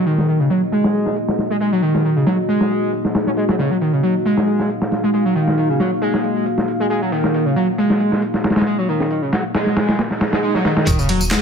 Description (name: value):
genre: breakbeat, breaks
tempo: 136 BPM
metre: 4/4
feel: swing 54% on 16ths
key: Eb minor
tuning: A4 = 440 Hz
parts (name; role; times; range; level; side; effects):
- deep dark ambient pad; sustained chords; 0.0-11.4 s; Bb3 to F5; -22 LUFS; left 1 dB; chorus, built-in reverb, vintage 12-bit sampler grit, sidechain pumping
- overdriven synth lead; riff; 0.0-11.4 s; Db3 to Db4; -18 LUFS; equal; distortion, tube saturation, wide subtle chorus, vintage 12-bit sampler grit, ping-pong delay
- dusty soul sampler-style drum kit; drums; 0.1-11.4 s; hi-hat, kick drum, snare drum; -21 LUFS; equal; low-pass filter on snare, low-pass filter on hats, low-pass filter on kick
- swell and sub drop; sound effects; 10.1-11.4 s; none; -24 LUFS; right 3 dB; none
- saturated sub bass; bass; 10.9-11.4 s; Eb1; -24 LUFS; equal; none
- punchy analog drum machine; drums; 10.9-11.4 s; handclaps, ride cymbal, tambourine; -23 LUFS; equal; overdrive
room: light reverb, digital ambience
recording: none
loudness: -15 LUFS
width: side -6 dB against mid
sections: 0.0-10.9 A section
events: filter sweep on analog synth lead 0.0-10.9; swell 10.1-10.9; impact 10.9-11.4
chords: 0.0 Ebm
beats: | 0.28 0.72 1.17 1.61 | 2.05 2.49 2.93 3.37 | 3.81 4.25 4.69 5.13 | 5.58 6.02 6.46 6.90 | 7.34 7.78 8.22 8.66 | 9.11 9.55 9.99 10.43 | 10.87 11.31